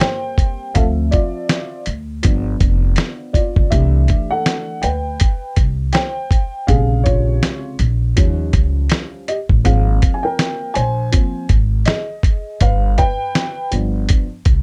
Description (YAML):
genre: hip hop, jazz-hop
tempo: 81 BPM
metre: 4/4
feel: swing 61% on 16ths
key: unclear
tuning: A4 = 445 Hz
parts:
  - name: dark upright piano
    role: accompaniment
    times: 0.0-14.2 s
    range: C3 to Ab5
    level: -24 LUFS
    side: equal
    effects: none
  - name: dusty soul sampler-style drum kit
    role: drums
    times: 0.0-14.6 s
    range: hi-hat, kick drum, snare drum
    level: -18 LUFS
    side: equal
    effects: none
  - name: upright bass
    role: bass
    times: 0.8-14.6 s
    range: F1 to Eb2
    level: -20 LUFS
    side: equal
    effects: none
room: little or no reverb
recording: dark, warm production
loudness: -17 LUFS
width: mono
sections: 0.0-14.6 A section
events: upright piano solo 0.0-14.6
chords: 0.0 Abmaj7 (rootless); 0.8 Dm7; 2.2 G7; 3.7 C6; 6.7 Bbm7; 8.2 Eb7; 9.6 Ab6; 12.6 G7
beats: 0.02 | 0.76 1.50 2.24 2.98 | 3.72 4.46 5.20 5.94 | 6.68 7.42 8.16 8.91 | 9.65 10.39 11.13 11.87 | 12.61 13.35 14.09